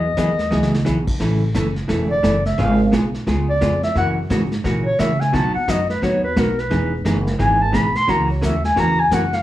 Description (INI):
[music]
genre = country, western swing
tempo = 174 BPM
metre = 4/4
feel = swing 63% on 8ths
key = E major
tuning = A4 = 439 Hz
[part]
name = breathy clarinet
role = second line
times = 0.0-9.4 s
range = A#4 to C6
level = -20 LUFS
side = left 1 dB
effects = none
[part]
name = vintage hollow-body jazz guitar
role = accompaniment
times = 0.0-9.2 s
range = B2 to A4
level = -22 LUFS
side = equal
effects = none
[part]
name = upright bass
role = bass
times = 0.0-9.4 s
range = E1 to C#3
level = -21 LUFS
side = equal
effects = none
[part]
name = vintage brush drum kit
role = drums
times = 0.2-9.4 s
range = brushed snare drum, crash cymbal, hi-hat, kick drum, snare drum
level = -24 LUFS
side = equal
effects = none
[sound]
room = moderate studio reverb, RT60 0.6 s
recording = small room reverb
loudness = -16 LUFS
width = side -14 dB against mid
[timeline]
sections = 0.0-9.4 A section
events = clarinet solo 0.0-9.4; drum fill 0.5-0.9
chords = 0.0 Eadd9; 1.2 A; 2.6 C#7/G#; 4.0 F#7; 5.3 B; 6.7 Emaj7; 8.1 F#7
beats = 0.17 0.52 0.86 | 1.20 1.55 1.89 2.24 | 2.58 2.93 3.27 3.61 | 3.96 4.30 4.65 4.99 | 5.33 5.68 6.02 6.37 | 6.71 7.05 7.40 7.74 | 8.08 8.43 8.77 9.12